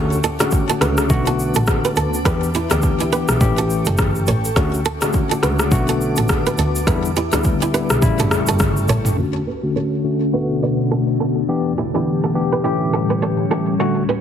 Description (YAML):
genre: afrobeats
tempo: 104 BPM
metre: 4/4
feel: swing 58% on 16ths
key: unclear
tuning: A4 = 441 Hz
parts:
  - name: tine electric piano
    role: accompaniment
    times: 0.0-14.0 s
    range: C#3 to G4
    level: -21 LUFS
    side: left 2 dB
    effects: medium stereo tremolo, low-pass filter
  - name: glassy FM pad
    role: sustained chords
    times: 0.0-14.2 s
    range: D2 to D6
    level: -24 LUFS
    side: left 1 dB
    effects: ensemble chorus, built-in reverb, sidechain pumping, low-pass filter
  - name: flamenco guitar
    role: riff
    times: 0.0-14.2 s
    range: D4 to D5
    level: -23 LUFS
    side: right 5 dB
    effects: low-pass filter, ping-pong delay
  - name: dark double bass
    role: bass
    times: 0.0-9.1 s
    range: F#1 to E2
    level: -21 LUFS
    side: equal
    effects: none
  - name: deep house drum kit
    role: drums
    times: 0.1-9.2 s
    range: kick drum, rim click, shaker, toms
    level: -20 LUFS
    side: equal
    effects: overdrive
room: light reverb, digital ambience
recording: heavily compressed radio sound, multiband compression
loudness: -16 LUFS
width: side -9 dB against mid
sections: 0.0-9.2 A section; 9.2-14.2 B section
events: filter sweep 9.2-14.2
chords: 0.0 Dmaj7; 1.1 Bm7; 2.3 Em7; 3.4 A7; 4.6 Dmaj7; 5.7 Bm7; 6.9 Em7; 8.0 A7; 9.2 Dmaj7; 10.3 Bm7; 11.5 Em7; 12.6 A7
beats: 0.52 1.10 1.68 | 2.25 2.83 3.41 3.98 | 4.56 5.14 5.71 6.29 | 6.87 7.45 8.02 8.60 | 9.18 9.75 10.33 10.91 | 11.48 12.06 12.64 13.21 | 13.79